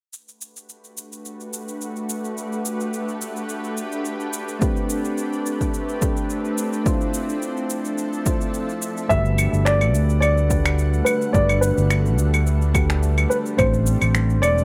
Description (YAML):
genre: sunset chillout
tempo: 107 BPM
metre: 4/4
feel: swing 54% on 16ths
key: G major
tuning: A4 = 437 Hz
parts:
  - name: shimmering ambient pad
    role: sustained chords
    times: 1.1-14.6 s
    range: C3 to F#5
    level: -31 LUFS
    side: equal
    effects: chorus, built-in reverb
  - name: electronic shaker, claves and finger snaps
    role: drums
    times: 0.1-14.6 s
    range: none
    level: -30 LUFS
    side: equal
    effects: overdrive, studio ambience
  - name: soft electric-piano-like synth keys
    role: accompaniment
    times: 4.6-14.6 s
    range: A3 to C5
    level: -29 LUFS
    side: equal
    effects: chorus, delay
  - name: electronic kick drum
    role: drums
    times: 4.6-13.7 s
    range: none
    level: -26 LUFS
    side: equal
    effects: overdrive, studio ambience
  - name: dark grand piano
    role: melody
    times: 9.1-14.6 s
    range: B4 to E5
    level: -25 LUFS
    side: equal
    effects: delay
  - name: fretless electric bass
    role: bass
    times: 9.1-14.6 s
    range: E1 to D2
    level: -21 LUFS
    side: equal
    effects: none
room: light reverb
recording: none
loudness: -21 LUFS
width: mono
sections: 0.1-9.1 A section; 9.1-14.6 B section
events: none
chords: 0.1 Gmaj9; 4.6 Am11; 6.9 Dm9; 9.1 Gmaj9; 13.6 Am11